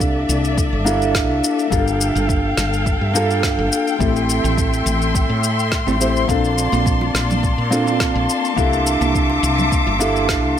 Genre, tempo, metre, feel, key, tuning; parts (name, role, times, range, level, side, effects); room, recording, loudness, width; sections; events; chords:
sunset chillout; 105 BPM; 4/4; swing 53% on 16ths; A4 = 443 Hz
nylon-string guitar; accompaniment; 0.0-10.6 s; A3 to D5; -20 LUFS; moving between left 6 dB and right 4 dB; auto-pan, ping-pong delay
rich studio string section; sustained chords; 0.0-10.6 s; Bb3 to D6; -23 LUFS; left 2 dB
woody fretless electric bass; bass; 0.0-10.5 s; G1 to Bb2; -21 LUFS; equal
electronic kick drum; drums; 0.0-10.4 s; -21 LUFS; equal
electronic shaker and snare drum; drums; 0.0-10.4 s; -24 LUFS; left 2 dB
wind-like tuned noise texture; texture; 7.1-10.6 s; C6; -27 LUFS; right 2 dB; built-in reverb
congas and bongos; percussion; 6.7-10.0 s; -27 LUFS; right 2 dB
light reverb; -15 LUFS; side -9 dB against mid
0.0-10.6 A section
0.0 C13; 1.7 Gm9; 4.0 Am7; 6.3 Bbmaj9; 8.6 C13